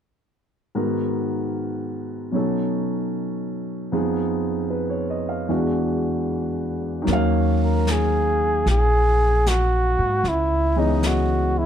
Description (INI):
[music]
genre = jazz ballad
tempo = 76 BPM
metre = 4/4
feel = swing 67% on 8ths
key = Eb minor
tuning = A4 = 440 Hz
[part]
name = warm concert grand piano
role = accompaniment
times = 0.7-11.7 s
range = E2 to F5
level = -23 LUFS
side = equal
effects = none
[part]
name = upright bass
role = bass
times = 7.1-11.7 s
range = Bb1 to Ab2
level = -21 LUFS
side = equal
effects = none
[part]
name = jazz brush drum kit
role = drums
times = 7.1-11.7 s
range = brushed snare drum, hi-hat, snare drum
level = -32 LUFS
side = left 2 dB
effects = none
[part]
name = warm flugelhorn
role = melody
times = 7.6-11.7 s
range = Eb4 to Bb4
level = -21 LUFS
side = equal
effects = none
[sound]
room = light reverb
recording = dark, warm production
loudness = -20 LUFS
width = side -9 dB against mid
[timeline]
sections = 0.8-7.1 A section; 7.1-11.7 B section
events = none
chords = 0.8 Abm7; 2.3 B9; 3.9 Fm7b5; 5.5 E9; 7.1 Ebm9; 10.2 Dbm9